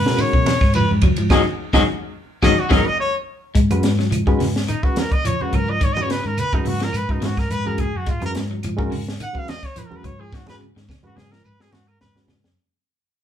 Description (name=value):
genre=afrobeat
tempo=106 BPM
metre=4/4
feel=swing 54% on 16ths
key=G# dorian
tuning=A4 = 436 Hz
part: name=clear trumpet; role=melody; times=0.0-12.2 s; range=D#4 to F#5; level=-24 LUFS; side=equal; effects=none
part: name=clean electric guitar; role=arpeggios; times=0.0-12.5 s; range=C#3 to G#3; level=-24 LUFS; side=left 4 dB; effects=none
part: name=hollow-body short-scale fingered electric bass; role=bass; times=0.0-12.6 s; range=G#1 to B2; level=-24 LUFS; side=equal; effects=none
part: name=barky reed electric piano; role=accompaniment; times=0.1-12.4 s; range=G#3 to B4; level=-26 LUFS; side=equal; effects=overdrive, tremolo
part: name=compact cocktail drum kit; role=drums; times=0.1-12.6 s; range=hi-hat, kick drum, ride cymbal, snare drum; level=-21 LUFS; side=equal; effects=none
part: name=claves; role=percussion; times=0.2-12.4 s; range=none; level=-35 LUFS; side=right 5 dB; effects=none
part: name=congas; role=percussion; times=0.2-12.4 s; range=none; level=-28 LUFS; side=right 2 dB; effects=none
part: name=shekere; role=percussion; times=0.2-12.4 s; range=none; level=-30 LUFS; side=right 1 dB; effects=none
room=light reverb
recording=band playing live in one room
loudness=-17 LUFS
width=side -9 dB against mid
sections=0.0-3.6 A section; 3.6-12.6 B section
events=trumpet solo 0.0-3.6, 3.6-12.6; band accent 1.3-3.6; drum fill 2.9-3.6, 10.3-12.6; fade-out 3.6-12.6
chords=0.0 G#7(no3); 3.6 G#m7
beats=0.18 0.74 | 1.30 1.87 2.43 2.99 | 3.55 4.12 4.68 5.24 | 5.81 6.37 6.93 7.50 | 8.06 8.62 9.19 9.75 | 10.32 10.88 11.45 12.01